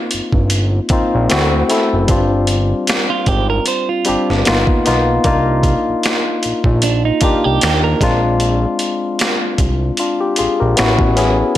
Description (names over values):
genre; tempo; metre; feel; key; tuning
R&B, neo-soul; 76 BPM; 4/4; swing 55% on 16ths; C minor; A4 = 439 Hz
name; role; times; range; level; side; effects
barky tine electric piano; accompaniment; 0.0-11.6 s; G3 to Bb4; -16 LUFS; left 2 dB; overdrive
fat analog bass; bass; 0.1-11.4 s; F#1 to Eb2; -17 LUFS; equal; none
boom bap sampler-style drum kit; drums; 0.1-11.6 s; finger snaps, hi-hat, kick drum, snare drum; -18 LUFS; equal; none
clean electric guitar; second line; 3.1-8.2 s; D4 to C5; -19 LUFS; right 8 dB; none
room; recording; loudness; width
light reverb; none; -13 LUFS; side -13 dB against mid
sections
0.0-11.6 A section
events
none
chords
0.0 Ab69 (rootless); 1.3 D9; 2.1 G7sus4; 4.5 G7alt; 5.2 Cm11; 8.0 Bb9; 10.8 A69